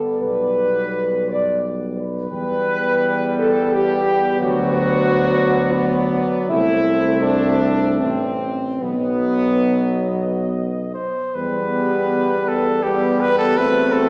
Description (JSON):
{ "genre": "classical, hymn-like piece for brass band", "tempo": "69-92 BPM", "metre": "3/4", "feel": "rubato", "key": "E minor", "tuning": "A4 = 441 Hz", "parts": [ { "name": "dark cornet", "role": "melody", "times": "0.0-14.1 s", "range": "G4 to G5", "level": "-27 LUFS", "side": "equal", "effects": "none" }, { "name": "mellow French horn section", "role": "second line", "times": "0.0-14.1 s", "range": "B3 to D5", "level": "-23 LUFS", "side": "equal", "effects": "none" }, { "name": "warm euphonium", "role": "accompaniment", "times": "0.0-14.1 s", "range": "B3 to C4", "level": "-28 LUFS", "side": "equal", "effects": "none" }, { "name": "warm trombone", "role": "accompaniment", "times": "0.0-14.1 s", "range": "F#3 to A3", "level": "-27 LUFS", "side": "equal", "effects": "none" }, { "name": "mellow tuba", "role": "bass", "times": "0.2-14.1 s", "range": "A1 to E2", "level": "-27 LUFS", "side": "equal", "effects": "none" } ], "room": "wet concert hall reverb, RT60 1.9 s", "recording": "nothing above 10.8 kHz", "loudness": "-19 LUFS", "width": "mono", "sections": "0.0-11.4 A section; 11.4-14.1 B section", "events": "none", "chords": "0.2 G/B; 2.3 Em; 4.4 Bm/D; 6.5 Am/C; 8.0 Am; 8.8 B; 11.4 Em; 13.6 F#m7b5/E" }